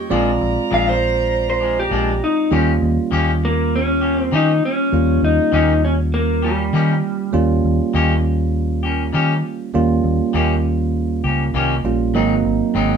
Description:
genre	blues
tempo	100 BPM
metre	4/4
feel	swing 54% on 16ths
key	Eb mixolydian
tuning	A4 = 440 Hz
part	electric guitar through a small old amp	melody	0.0-7.3 s	G3 to F5	-18 LUFS	left 1 dB	none
part	bell-like tine electric piano	accompaniment	0.0-13.0 s	Gb3 to D5	-21 LUFS	right 6 dB	none
part	brilliant horn section	sustained chords	0.0-2.5 s	Bb4 to Bb5	-28 LUFS	right 3 dB	none
part	clean electric guitar	stabs	0.1-12.9 s	Ab2 to G4	-22 LUFS	left 4 dB	none
part	vintage muted fingered electric bass	bass	0.1-13.0 s	Ab1 to Eb3	-20 LUFS	left 1 dB	none
room	moderate studio reverb, RT60 0.8 s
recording	band playing live in one room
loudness	-15 LUFS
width	side -6 dB against mid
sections	0.0-2.5 A section; 2.5-13.0 B section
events	clean electric guitar solo 0.0-2.5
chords	0.1 Bb7; 2.5 Eb7; 12.1 Ab7

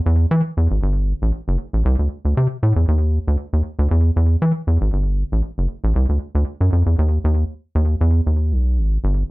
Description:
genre	funk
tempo	117 BPM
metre	4/4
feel	straight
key	unclear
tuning	A4 = 439 Hz
part	rubbery square bass	solo	0.1-9.2 s	F#1 to E3	-16 LUFS	equal	slapback echo
room	moderate booth ambience, RT60 0.3 s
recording	dry, close 1970s-style studio recording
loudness	-17 LUFS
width	side -22 dB against mid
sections	0.0-7.0 A section; 7.0-9.3 B section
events	none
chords	none

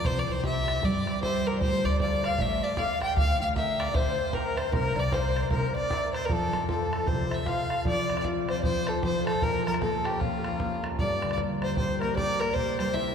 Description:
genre	celtic folk, Celtic hornpipe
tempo	154 BPM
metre	4/4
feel	swing 62% on 8ths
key	F major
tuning	A4 = 437 Hz
part	clear fiddle	melody	0.0-13.1 s	F4 to G5	-30 LUFS	equal	none
part	concert harp	accompaniment	0.0-13.1 s	G2 to G5	-32 LUFS	equal	none
part	upright bass	bass	0.0-7.3 s	A1 to G2	-31 LUFS	equal	none
part	bodhran	percussion	0.0-13.1 s	none	-32 LUFS	right 1 dB	none
part	bright wooden flute	second line	1.6-13.1 s	E4 to G5	-32 LUFS	left 4 dB	none
room	wet cathedral reverb, RT60 4.4 s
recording	recorded in a church or concert hall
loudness	-25 LUFS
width	side -7 dB against mid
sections	0.0-7.9 A section; 7.9-13.1 B section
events	none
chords	0.0 C; 1.6 Dm; 3.2 Gm/D; 4.7 C7sus4; 5.5 C7; 6.3 F; 7.9 F5; 9.4 Bbm; 11.0 Gm; 12.6 C

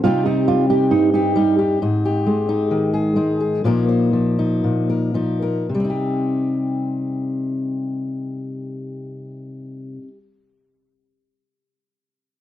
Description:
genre	indie folk with a building arrangement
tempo	108-135 BPM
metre	4/4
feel	straight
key	C minor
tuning	A4 = 445 Hz
part	fingerpicked steel-string acoustic guitar	accompaniment	0.0-10.2 s	G2 to C5	-19 LUFS	left 2 dB	none
part	nylon-string guitar	arpeggios	0.0-1.6 s	Eb4 to G4	-19 LUFS	right 8 dB	none
room	studio reverb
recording	dry, close 1970s-style studio recording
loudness	-17 LUFS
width	side -12 dB against mid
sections	0.0-5.7 A section; 5.7-10.1 B section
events	slowing down 1.8-5.7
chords	0.0 Cm; 1.8 Ab5; 3.6 Bbsus4; 5.7 Cm

